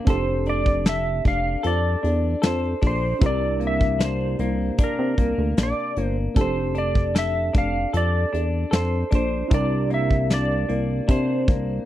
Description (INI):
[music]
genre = indie pop, bedroom pop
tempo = 76 BPM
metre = 4/4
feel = straight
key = F major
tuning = A4 = 440 Hz
[part]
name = reed electric piano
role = accompaniment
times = 0.0-11.9 s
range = C4 to Bb4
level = -32 LUFS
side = right 7 dB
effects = cassette tape
[part]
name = semi-hollow electric guitar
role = accompaniment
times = 0.0-11.9 s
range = C3 to A4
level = -28 LUFS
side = left 4 dB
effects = lush chorus, warbly pitch drift
[part]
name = clean lap steel guitar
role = melody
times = 0.1-11.9 s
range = Bb4 to F5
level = -26 LUFS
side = equal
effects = analog chorus, slapback echo
[part]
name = chorused synth bass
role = bass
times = 0.1-11.8 s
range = F1 to C3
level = -24 LUFS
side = equal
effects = none
[part]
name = soft brush drum kit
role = drums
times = 0.1-11.7 s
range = hi-hat, kick drum, snare drum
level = -20 LUFS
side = equal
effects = none
[sound]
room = little or no reverb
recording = dry, close 1970s-style studio recording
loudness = -20 LUFS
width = side -13 dB against mid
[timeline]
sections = 0.0-11.9 A section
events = none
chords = 0.1 F6; 3.2 C9; 6.4 F6; 9.5 C9